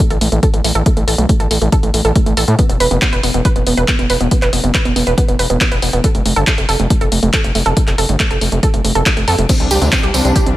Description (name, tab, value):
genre	uplifting trance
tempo	139 BPM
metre	4/4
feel	straight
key	unclear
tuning	A4 = 440 Hz
part	wide unison pluck	arpeggios	0.0-10.5 s	A3 to B4	-18 LUFS	right 3 dB	sidechain pumping, digital delay
part	electronic kick drum	drums	0.0-10.4 s	none	-15 LUFS	equal	none
part	punchy analog drum machine	drums	0.0-10.6 s	congas, crash cymbal, handclaps, hi-hat	-18 LUFS	left 1 dB	sidechain pumping on hats, sidechain pumping on cymbals, sidechain pumping on perc
part	gritty driven synth bass	bass	0.1-10.5 s	E1 to A2	-16 LUFS	equal	sidechain pumping
part	muted studio string section	sustained chords	9.5-10.6 s	C3 to D4	-21 LUFS	left 2 dB	sidechain pumping
part	tambourine	percussion	9.5-10.4 s	none	-24 LUFS	right 4 dB	none
room	little or no reverb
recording	none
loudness	-11 LUFS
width	side -15 dB against mid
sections	0.0-10.6 A section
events	none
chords	0.0 N.C.; 2.6 E5; 6.0 F; 9.5 Cadd9